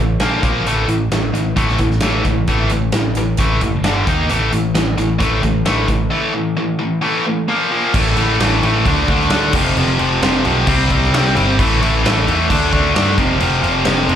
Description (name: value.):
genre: hard rock.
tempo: 132 BPM.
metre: 4/4.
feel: straight.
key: A minor.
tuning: A4 = 440 Hz.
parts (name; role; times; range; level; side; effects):
tight distorted guitar; riff; 0.0-14.2 s; F2 to D#4; -16 LUFS; equal; distortion, slapback echo.
picked electric bass; bass; 0.0-14.2 s; F1 to G2; -19 LUFS; equal; none.
huge arena drum kit; drums; 0.2-14.2 s; crash cymbal, hi-hat, kick drum, snare drum; -20 LUFS; equal; none.
room: small room ambience.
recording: live gig heard through the venue's PA, club reverb.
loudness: -13 LUFS.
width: side -9 dB against mid.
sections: 0.0-7.9 A section; 7.9-14.2 B section.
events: none.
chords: 0.2 Bb5; 0.7 A5; 3.8 G5; 4.1 D#5; 4.3 A5; 7.5 Bb5; 7.9 A5; 8.8 D5; 9.5 F5; 10.7 C5; 11.6 A5; 12.5 D5; 13.2 F5.